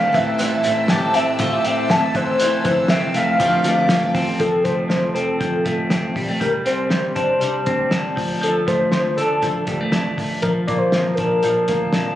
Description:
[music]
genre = jangly indie pop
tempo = 120 BPM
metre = 4/4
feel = straight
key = D minor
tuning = A4 = 440 Hz
[part]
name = warm velvety synth lead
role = melody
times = 0.0-12.2 s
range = A4 to A5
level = -20 LUFS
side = left 1 dB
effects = chorus, tape echo
[part]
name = picked twelve-string acoustic guitar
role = accompaniment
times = 0.0-4.4 s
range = A2 to A4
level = -27 LUFS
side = right 6 dB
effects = none
[part]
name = rich studio string section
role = sustained chords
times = 0.0-4.4 s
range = C5 to E6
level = -32 LUFS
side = left 1 dB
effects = none
[part]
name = electric guitar through a small old amp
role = arpeggios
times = 0.0-12.2 s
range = E3 to G4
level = -22 LUFS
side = left 1 dB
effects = spring reverb
[part]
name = vintage muted picked electric bass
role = bass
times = 0.0-12.1 s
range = F1 to E2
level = -28 LUFS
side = equal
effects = none
[part]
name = cloth-damped thuddy drum kit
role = drums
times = 0.1-12.1 s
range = hi-hat, kick drum, snare drum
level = -24 LUFS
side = equal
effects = none
[sound]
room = light reverb, studio reverb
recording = recorded on a phone in the room, club reverb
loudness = -16 LUFS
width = side -12 dB against mid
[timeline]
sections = 0.0-4.4 A section; 4.4-12.2 B section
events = none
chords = 0.1 Am7; 2.1 Fmaj7; 3.4 Dm7; 4.4 F; 6.4 Csus2; 8.2 Dm; 10.4 Bb

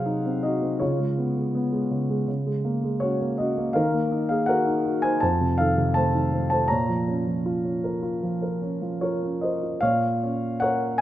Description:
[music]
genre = classical, lyrical solo piano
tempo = 73-83 BPM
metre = 4/4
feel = rubato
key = Bb minor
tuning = A4 = 440 Hz
[part]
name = warm concert grand piano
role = solo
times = 0.0-11.0 s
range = F2 to Bb5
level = -22 LUFS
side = equal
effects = none
[sound]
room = moderate concert hall reverb, RT60 2.1 s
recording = none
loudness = -22 LUFS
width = side -13 dB against mid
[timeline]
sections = 0.0-9.8 A section; 9.8-11.0 A section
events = none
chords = 0.0 Cdim; 0.8 Db7; 2.3 Gbadd9/Db; 3.8 Ebm; 5.2 F7; 6.7 Bbm

